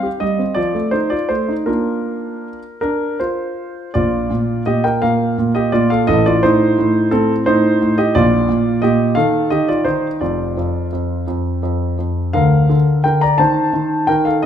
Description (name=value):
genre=classical-period piano sonatina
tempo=52-59 BPM (dotted quarters)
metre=6/8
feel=rubato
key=Bb major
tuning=A4 = 441 Hz
part: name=warm concert grand piano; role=solo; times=0.0-14.5 s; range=F1 to Bb5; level=-14 LUFS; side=equal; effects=none
room=moderate recital hall reverb, RT60 1.7 s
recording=minimal, uncompressed stereo recording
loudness=-14 LUFS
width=side -9 dB against mid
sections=0.0-3.9 A section; 3.9-14.5 B section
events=none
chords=0.0 Cm; 0.6 F7; 1.7 Bb; 6.1 F7/A (rootless); 8.1 Bb; 9.2 Eb; 10.2 N.C.; 12.4 Bb/D; 13.4 Eb5